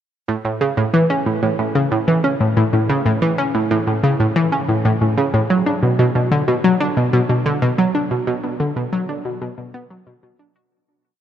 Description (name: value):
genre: ambient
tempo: 92 BPM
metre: 4/4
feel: straight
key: B minor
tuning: A4 = 439 Hz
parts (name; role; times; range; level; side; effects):
- analog pluck; solo; 0.3-10.7 s; A2 to F#4; -16 LUFS; equal; chorus, analog delay
room: wet huge ambient reverb, RT60 8.3 s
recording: none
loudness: -16 LUFS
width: side -10 dB against mid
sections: 0.3-10.7 A section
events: fade-out 7.2-10.7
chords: none